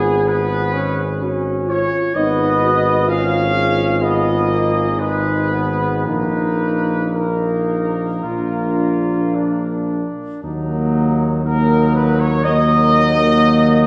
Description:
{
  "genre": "classical, hymn-like piece for brass band",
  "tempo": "53-66 BPM",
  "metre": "4/4",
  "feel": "rubato",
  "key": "Eb minor",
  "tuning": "A4 = 438 Hz",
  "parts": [
    { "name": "dark trumpet section", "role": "melody", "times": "0.0-13.9 s", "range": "G#4 to F5", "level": "-22 LUFS", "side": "equal", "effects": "none" },
    { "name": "warm flugelhorn", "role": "second line", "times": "0.0-13.9 s", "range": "D4 to Cb5", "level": "-28 LUFS", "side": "equal", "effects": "none" },
    { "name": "brilliant trombone", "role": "accompaniment", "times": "0.0-13.9 s", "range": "Gb3 to C#4", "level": "-27 LUFS", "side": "equal", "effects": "none" },
    { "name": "dark euphonium", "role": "accompaniment", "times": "0.0-13.9 s", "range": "Bb3 to Gb4", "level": "-23 LUFS", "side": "equal", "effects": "none" },
    { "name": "warm tuba", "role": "bass", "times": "0.0-13.9 s", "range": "G#1 to Eb2", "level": "-22 LUFS", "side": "equal", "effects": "none" }
  ],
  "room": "wet scoring stage reverb, RT60 1.6 s",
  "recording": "heard from further back in the room",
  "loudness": "-17 LUFS",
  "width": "mono",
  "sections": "0.0-10.4 A section; 10.4-13.9 B section",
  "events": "none",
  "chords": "0.0 C#7/G#; 2.2 Fm7b5/Ab; 6.0 Bbsus4; 8.2 Bb; 10.4 Ebm"
}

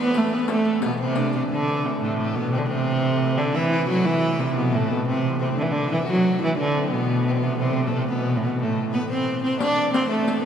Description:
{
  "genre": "medieval dance",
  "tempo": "118 BPM (dotted quarters)",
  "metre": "6/8",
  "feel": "straight",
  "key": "A dorian",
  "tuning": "A4 = 440 Hz",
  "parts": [
    { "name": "clear viola da gamba", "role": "melody", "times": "0.0-10.4 s", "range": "A2 to D4", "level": "-21 LUFS", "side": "right 1 dB", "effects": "none" },
    { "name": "clear fiddle", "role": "second line", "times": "0.0-10.5 s", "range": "A3 to D5", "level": "-29 LUFS", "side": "left 4 dB", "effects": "none" },
    { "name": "clear hurdy-gurdy", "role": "drone", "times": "0.0-10.5 s", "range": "A2 to E3", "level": "-31 LUFS", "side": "equal", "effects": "none" },
    { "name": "riq", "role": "percussion", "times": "0.1-1.4, 9.6-10.4 s", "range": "none", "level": "-32 LUFS", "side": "left 3 dB", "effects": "none" }
  ],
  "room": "wet cathedral reverb, RT60 5.4 s",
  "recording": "heard from further back in the room",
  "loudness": "-20 LUFS",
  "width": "side -8 dB against mid",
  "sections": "0.0-1.5 A section; 1.5-9.6 B section",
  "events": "none",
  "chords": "none"
}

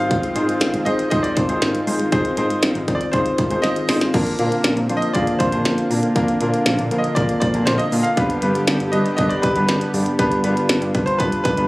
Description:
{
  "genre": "synth-pop",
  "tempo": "119 BPM",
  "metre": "4/4",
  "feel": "straight",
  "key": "unclear",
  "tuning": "A4 = 440 Hz",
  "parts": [
    { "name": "bright grand piano", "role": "melody", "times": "0.0-11.7 s", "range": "B4 to F5", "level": "-24 LUFS", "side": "equal", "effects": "none" },
    { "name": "clear grand piano", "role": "accompaniment", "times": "0.0-11.7 s", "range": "Bb3 to D5", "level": "-22 LUFS", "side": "left 1 dB", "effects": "none" },
    { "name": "warm analog pad", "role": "sustained chords", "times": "0.0-11.7 s", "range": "D3 to G4", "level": "-24 LUFS", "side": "equal", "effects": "chorus" },
    { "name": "fat analog bass", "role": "bass", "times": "0.0-11.7 s", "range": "G1 to Bb2", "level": "-23 LUFS", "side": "equal", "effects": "none" },
    { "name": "glitchy drum kit", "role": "drums", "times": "0.1-11.7 s", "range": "crash cymbal, hi-hat, kick drum, snare drum", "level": "-22 LUFS", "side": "equal", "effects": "overdrive" }
  ],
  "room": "light reverb",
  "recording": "recorded on a phone in the room, club reverb, compression",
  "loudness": "-16 LUFS",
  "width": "side -20 dB against mid",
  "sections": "0.0-11.7 A section",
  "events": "drum fill 3.6-4.1",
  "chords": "0.0 Ab6; 4.1 Bbadd9; 8.2 G"
}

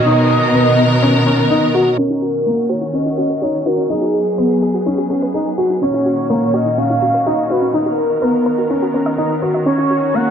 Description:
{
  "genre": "piano and strings electronica",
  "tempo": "125 BPM",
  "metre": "4/4",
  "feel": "straight",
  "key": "Eb minor",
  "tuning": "A4 = 440 Hz",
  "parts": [
    { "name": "warm velvety synth lead", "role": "melody", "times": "0.0-10.3 s", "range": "Ab4 to Gb5", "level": "-19 LUFS", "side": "right 1 dB", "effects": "chorus, tape echo" },
    { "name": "rich studio string section", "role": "sustained chords", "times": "0.0-10.3 s", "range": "Bb2 to A#4", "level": "-21 LUFS", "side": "equal", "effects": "none" },
    { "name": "dark chamber cello section", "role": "bass", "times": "0.0-2.0 s", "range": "B2", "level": "-17 LUFS", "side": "equal", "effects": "tube saturation" },
    { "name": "dark grand piano", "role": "riff", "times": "0.1-10.3 s", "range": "Bb3 to F#4", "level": "-17 LUFS", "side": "left 1 dB", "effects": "tape echo" },
    { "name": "soft round pluck", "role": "arpeggios", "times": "2.0-10.2 s", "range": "Db4 to D#5", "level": "-24 LUFS", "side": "equal", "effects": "chorus, tape echo" }
  ],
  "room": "moderate huge ambient reverb, RT60 4.5 s",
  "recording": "low-pass filter",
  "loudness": "-13 LUFS",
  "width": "side -8 dB against mid",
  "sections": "0.0-2.0 A section; 2.0-10.3 B section",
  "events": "filter sweep on synth arpeggio sound 2.0-10.3; filter sweep 2.0-10.3",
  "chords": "0.1 Bmaj7; 2.0 Ebm7; 3.9 Abm7; 5.8 Ebm7/Bb; 7.7 Bmaj7; 9.7 Ebm7"
}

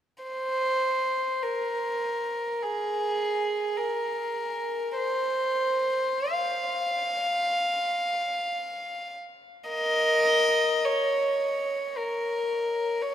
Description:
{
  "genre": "classical, free, expressive piece for unaccompanied violin",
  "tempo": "free time",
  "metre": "none",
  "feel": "none",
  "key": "F minor",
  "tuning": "A4 = 440 Hz",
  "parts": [
    { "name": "rich violin", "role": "solo", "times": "0.2-13.1 s", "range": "Ab4 to F5", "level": "-25 LUFS", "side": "equal", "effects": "none" }
  ],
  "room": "wet cathedral reverb, RT60 5.1 s",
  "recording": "none",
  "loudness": "-25 LUFS",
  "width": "side -10 dB against mid",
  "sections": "0.3-13.1 A section",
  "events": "none",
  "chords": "none"
}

